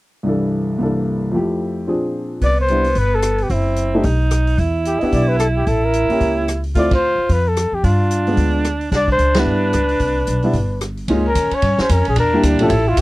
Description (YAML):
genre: jazz, small-group swing and bop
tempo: 221 BPM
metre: 4/4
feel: swing 60% on 8ths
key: C major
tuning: A4 = 441 Hz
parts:
  - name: warm concert grand piano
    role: accompaniment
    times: 0.2-12.7 s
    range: C2 to A4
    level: -19 LUFS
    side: equal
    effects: none
  - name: dark trumpet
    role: melody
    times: 2.4-13.0 s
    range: E4 to E5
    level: -19 LUFS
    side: left 2 dB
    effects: none
  - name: bright alto saxophone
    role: second line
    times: 2.4-13.0 s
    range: B3 to F4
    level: -22 LUFS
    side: right 4 dB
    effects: none
  - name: upright bass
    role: bass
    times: 2.4-13.0 s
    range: F#1 to G2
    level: -19 LUFS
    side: equal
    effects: none
  - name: vintage drum kit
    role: drums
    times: 2.4-13.0 s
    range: hi-hat, kick drum, ride cymbal, rim click, snare drum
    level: -23 LUFS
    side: equal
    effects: none
room: little or no reverb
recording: dry, close 1970s-style studio recording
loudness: -15 LUFS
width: side -19 dB against mid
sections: 0.2-2.4 A section; 2.4-11.1 B section; 11.1-13.0 C section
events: band accent 6.9, 9.3; break 10.8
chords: 0.2 C69; 0.8 C13; 1.3 Fmaj7; 1.9 Bb9; 2.4 Cmaj9; 3.5 F#m7b5; 4.0 B; 4.6 Em7; 5.7 A7b9; 6.8 Dm7; 7.8 G7b9; 8.9 Cmaj9; 11.1 Db69; 12.2 Em7b5